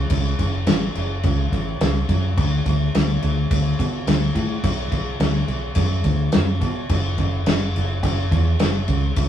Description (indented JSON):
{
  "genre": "rock, shoegaze and dream pop",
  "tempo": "106 BPM",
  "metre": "4/4",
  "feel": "straight",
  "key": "unclear",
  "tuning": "A4 = 440 Hz",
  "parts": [
    { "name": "fingered electric bass", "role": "bass", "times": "0.0-9.3 s", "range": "F#1 to B2", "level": "-20 LUFS", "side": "right 1 dB", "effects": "none" },
    { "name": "loose indie drum kit", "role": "drums", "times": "0.1-9.3 s", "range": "crash cymbal, kick drum, snare drum", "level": "-22 LUFS", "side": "left 1 dB", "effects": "none" }
  ],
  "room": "moderate stone room reverb, RT60 1.5 s",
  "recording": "rough rehearsal-room recording, small room ambience",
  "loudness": "-18 LUFS",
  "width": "side -10 dB against mid",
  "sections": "0.0-9.3 A section",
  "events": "none",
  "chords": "none",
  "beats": "| 0.11 0.67 1.24 1.81 | 2.37 2.94 3.51 4.07 | 4.64 5.20 5.77 6.34 | 6.90 7.47 8.04 8.60 | 9.17"
}